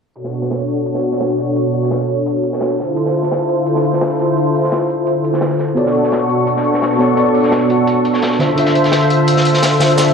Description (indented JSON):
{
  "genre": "liquid drum and bass",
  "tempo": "171 BPM",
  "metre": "4/4",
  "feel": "straight",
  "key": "B minor",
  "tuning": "A4 = 440 Hz",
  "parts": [
    { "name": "warm analog pad", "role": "sustained chords", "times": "0.2-10.1 s", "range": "B2 to C#6", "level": "-15 LUFS", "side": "equal", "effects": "chorus" },
    { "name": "crunchy breakbeat drum kit", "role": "drums", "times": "0.2-10.1 s", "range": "hi-hat, snare drum", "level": "-24 LUFS", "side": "equal", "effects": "high-pass filter on hats, high-pass filter on snare, high-pass filter on room" },
    { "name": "electronic hi-hat", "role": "drums", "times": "0.2-10.1 s", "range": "none", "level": "-32 LUFS", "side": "right 3 dB", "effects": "none" },
    { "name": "tine electric piano", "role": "accompaniment", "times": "5.7-10.1 s", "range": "D3 to E5", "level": "-15 LUFS", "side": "equal", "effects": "ensemble chorus, ping-pong delay" }
  ],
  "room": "wet plate reverb, RT60 1.8 s, studio ambience",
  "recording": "dreamy mix soaked in reverb, low-pass filter",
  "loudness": "-13 LUFS",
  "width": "side -6 dB against mid",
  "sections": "0.2-10.1 A section",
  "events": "filter sweep 0.2-10.1",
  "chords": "0.2 Bm7; 2.8 Dm7; 5.8 Bm7; 8.4 Dm7"
}